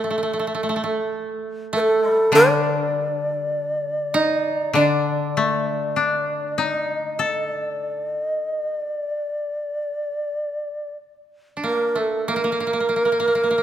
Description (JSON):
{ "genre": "japanese traditional, Japanese chamber music", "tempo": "45-50 BPM", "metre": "4/4", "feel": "rubato", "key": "unclear", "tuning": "A4 = 440 Hz", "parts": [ { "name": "breathy mellow long shakuhachi", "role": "melody", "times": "0.0-13.6 s", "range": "A4 to D5", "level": "-22 LUFS", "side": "equal", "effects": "none" }, { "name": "koto", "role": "second line", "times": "0.0-13.6 s", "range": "A3 to Eb4", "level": "-24 LUFS", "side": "right 2 dB", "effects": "none" }, { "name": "koto", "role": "accompaniment", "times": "2.3-9.7 s", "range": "D3 to A4", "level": "-24 LUFS", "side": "left 5 dB", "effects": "none" } ], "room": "moderate concert hall reverb, RT60 2.1 s", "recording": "none", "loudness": "-20 LUFS", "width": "side -10 dB against mid", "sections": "0.0-12.3 A section; 12.3-13.6 B section", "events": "none", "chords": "none" }